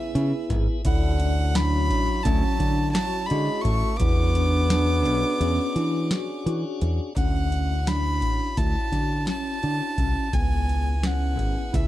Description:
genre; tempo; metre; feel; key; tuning
progressive instrumental, band music in an uneven meter; 171 BPM (eighths); 9/8; straight; D lydian; A4 = 440 Hz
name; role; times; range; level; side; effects
clear violin; melody; 0.0-11.9 s; E5 to D6; -30 LUFS; equal; digital delay
clear trombone; second line; 0.0-6.5 s; C#3 to B3; -30 LUFS; right 2 dB; none
tonewheel organ; accompaniment; 0.0-11.9 s; B3 to G#4; -35 LUFS; left 2 dB; overdrive, slow rotary speaker
tine electric piano; arpeggios; 0.0-11.9 s; B3 to F#4; -30 LUFS; left 1 dB; medium stereo tremolo
modern bright fingered electric bass; bass; 0.1-11.9 s; G#1 to E3; -24 LUFS; equal; none
booming analog drum machine; drums; 0.2-11.9 s; hi-hat, kick drum, snare drum; -26 LUFS; equal; none
room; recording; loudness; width
light reverb; dark, warm production; -21 LUFS; side -14 dB against mid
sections
0.0-7.2 A section; 7.2-11.9 B section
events
none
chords
0.0 C#m7; 0.9 Dmaj7; 4.0 E13; 7.2 Dmaj7; 10.3 C#m7

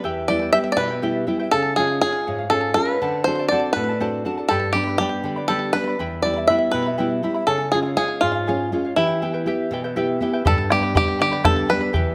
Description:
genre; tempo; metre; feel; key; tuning
andean folk, Andean ensemble; 81 BPM (dotted quarters); 6/8; straight; unclear; A4 = 440 Hz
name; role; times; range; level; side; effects
bluegrass banjo; melody; 0.0-12.1 s; E4 to E5; -23 LUFS; equal; slapback echo
charango; accompaniment; 0.0-12.1 s; E4 to B5; -29 LUFS; equal; none
nylon-string guitar; accompaniment; 0.0-12.1 s; E2 to G4; -27 LUFS; equal; none
bombo; percussion; 10.5-12.1 s; none; -24 LUFS; equal; none
room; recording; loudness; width
light reverb; close, detailed microphones; -21 LUFS; mono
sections
0.0-10.5 A section; 10.5-12.1 A section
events
none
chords
0.0 Em; 1.5 C#; 3.0 D7; 4.5 G; 6.0 Em; 7.5 C#; 9.0 Em; 10.5 G

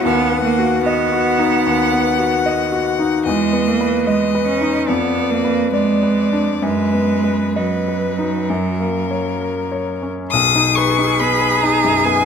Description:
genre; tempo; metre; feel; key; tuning
classical, slow romantic movement for piano trio; 64-76 BPM; 4/4; rubato; B major; A4 = 440 Hz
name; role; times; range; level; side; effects
rich violin; melody; 0.0-12.2 s; A#4 to D#6; -21 LUFS; left 9 dB; none
clear cello; second line; 0.0-12.2 s; F#3 to G#4; -19 LUFS; right 5 dB; none
bright grand piano; accompaniment; 0.0-12.2 s; B1 to D#5; -19 LUFS; left 2 dB; none
room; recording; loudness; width
moderate recital hall reverb, RT60 1.5 s; close, detailed microphones; -15 LUFS; side -7 dB against mid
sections
0.0-10.3 A section; 10.3-12.2 B section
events
none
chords
0.1 B/D#; 3.3 E5; 4.9 Fdim7; 6.6 B/F#; 8.5 F#; 10.3 B

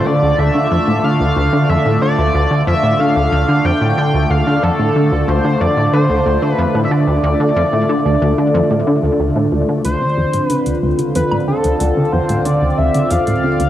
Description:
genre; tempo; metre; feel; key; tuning
ambient, sequencer-driven space music; 92 BPM; 4/4; straight; D minor; A4 = 440 Hz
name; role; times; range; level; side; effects
pulse-width lead; melody; 0.0-13.7 s; A4 to G5; -19 LUFS; left 1 dB; chorus, cassette tape, ping-pong delay
sweeping resonant pad; sustained chords; 0.0-13.7 s; D3 to D5; -17 LUFS; equal; chorus, cassette tape
plucky analog bass; riff; 0.1-13.7 s; D2 to D3; -16 LUFS; equal; analog chorus, cassette tape, ping-pong delay
analog drone; bass; 11.5-13.7 s; D2; -35 LUFS; equal; none
electronic hi-hat and woodblock; percussion; 9.8-13.7 s; none; -27 LUFS; right 1 dB; cassette tape
room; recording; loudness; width
wet lush hall reverb, RT60 1.7 s; home recording on cassette; -12 LUFS; side -12 dB against mid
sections
0.0-9.8 A section; 9.8-13.7 B section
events
filter sweep on analog synth bass 9.8-13.7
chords
0.0 Dm7

